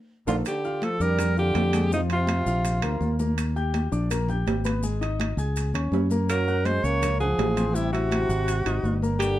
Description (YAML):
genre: Afro-Cuban jazz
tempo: 165 BPM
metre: 4/4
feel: straight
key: unclear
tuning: A4 = 442 Hz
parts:
  - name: clear alto saxophone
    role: melody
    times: 0.3-3.2, 6.3-9.4 s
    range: Eb4 to Db5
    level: -27 LUFS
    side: equal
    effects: none
  - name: warm trombone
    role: second line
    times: 0.3-3.2, 6.3-9.4 s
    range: C3 to Bb3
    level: -32 LUFS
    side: right 3 dB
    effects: none
  - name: warm concert grand piano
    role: accompaniment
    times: 0.3-9.3 s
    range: F3 to Ab6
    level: -32 LUFS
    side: left 4 dB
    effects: none
  - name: fingered electric bass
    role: bass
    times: 0.3-9.4 s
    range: G1 to Gb2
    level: -25 LUFS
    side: equal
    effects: none
  - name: congas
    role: percussion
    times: 0.3-9.4 s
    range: none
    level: -31 LUFS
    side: left 1 dB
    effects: none
  - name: maracas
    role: percussion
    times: 0.3-9.4 s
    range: none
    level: -42 LUFS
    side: left 4 dB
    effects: none
  - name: timbales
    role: percussion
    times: 0.3-9.4 s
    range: none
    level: -33 LUFS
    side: right 8 dB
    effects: none
room: light reverb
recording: dark, warm production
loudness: -22 LUFS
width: side -14 dB against mid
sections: 0.5-9.4 A section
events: drum fill 0.0-0.5; band accent 0.0-0.5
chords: 0.5 Bb6; 1.9 F5; 2.6 Bbadd9; 3.4 Ebmaj7; 4.8 Absus4; 5.6 Dbsus2; 6.3 Gbmaj9; 7.8 Am7; 8.5 Ab7